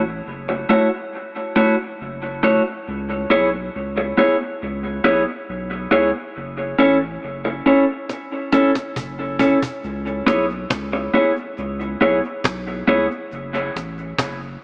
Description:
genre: dub reggae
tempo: 69 BPM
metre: 4/4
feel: straight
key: C# minor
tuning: A4 = 440 Hz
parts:
  - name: warm sub bass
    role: bass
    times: 0.0-14.6 s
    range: F#1 to C#2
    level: -29 LUFS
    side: equal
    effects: none
  - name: mellow electric guitar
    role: accompaniment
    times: 0.5-13.1 s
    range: A3 to C#5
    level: -18 LUFS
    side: equal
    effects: dub echo
  - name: cajon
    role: drums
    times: 8.1-14.5 s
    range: none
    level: -23 LUFS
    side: equal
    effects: none
room: light reverb, studio reverb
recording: AM radio sound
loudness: -17 LUFS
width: side -38 dB against mid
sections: 0.0-14.6 A section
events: drum fill 8.1-9.8; break 13.3-14.6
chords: 0.0 F#m7; 2.9 C#m7; 6.3 F#m7; 9.8 C#m7; 13.3 F#m

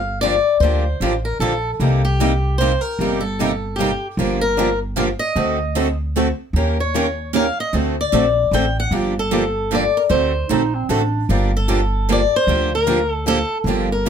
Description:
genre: acoustic string swing (jazz manouche)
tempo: 152 BPM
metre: 3/4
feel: swing 61% on 8ths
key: G minor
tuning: A4 = 441 Hz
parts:
  - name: picked swing-style acoustic guitar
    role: melody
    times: 0.0-14.1 s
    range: G4 to G5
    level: -20 LUFS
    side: left 2 dB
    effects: none
  - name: upright bass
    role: bass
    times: 0.0-14.1 s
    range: G1 to Eb2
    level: -21 LUFS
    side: equal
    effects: none
  - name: picked steel-string acoustic guitar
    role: accompaniment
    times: 0.2-14.1 s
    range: C3 to Bb4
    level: -23 LUFS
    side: left 4 dB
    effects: none
  - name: picked steel-string acoustic guitar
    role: accompaniment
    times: 0.2-14.1 s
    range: C3 to Bb4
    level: -23 LUFS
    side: right 8 dB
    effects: none
  - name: breathy clarinet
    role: second line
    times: 10.5-11.3 s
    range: C4 to Eb4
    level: -22 LUFS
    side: right 5 dB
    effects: none
room: light reverb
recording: none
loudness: -16 LUFS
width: side -8 dB against mid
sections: 0.0-11.3 A section; 11.3-14.1 A section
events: none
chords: 0.0 Gm9; 1.8 Cm7; 4.2 Gm7; 5.4 D7b9; 6.5 Eb7; 7.7 D7; 8.9 Gm9; 10.1 D7; 11.3 Gm9

